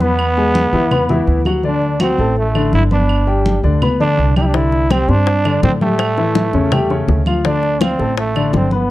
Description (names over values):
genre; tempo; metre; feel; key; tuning
latin, salsa; 165 BPM; 4/4; straight; unclear; A4 = 440 Hz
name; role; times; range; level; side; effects
growling trombone; melody; 0.0-8.9 s; A3 to E4; -18 LUFS; right 2 dB; none
warm baby grand piano; accompaniment; 0.0-8.9 s; C#3 to C6; -18 LUFS; left 3 dB; none
upright bass; bass; 0.0-8.9 s; G1 to A2; -18 LUFS; equal; none
congas; percussion; 0.0-8.9 s; none; -21 LUFS; equal; none
claves; percussion; 0.2-8.5 s; none; -29 LUFS; right 6 dB; none
bongos; percussion; 4.5-8.7 s; none; -22 LUFS; left 6 dB; none
room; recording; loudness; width
small room ambience; dry, close 1970s-style studio recording; -13 LUFS; side -16 dB against mid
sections
0.0-8.9 A section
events
none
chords
0.2 E7; 1.6 D7; 3.1 G; 4.5 Cadd9; 6.0 A7; 7.4 Dm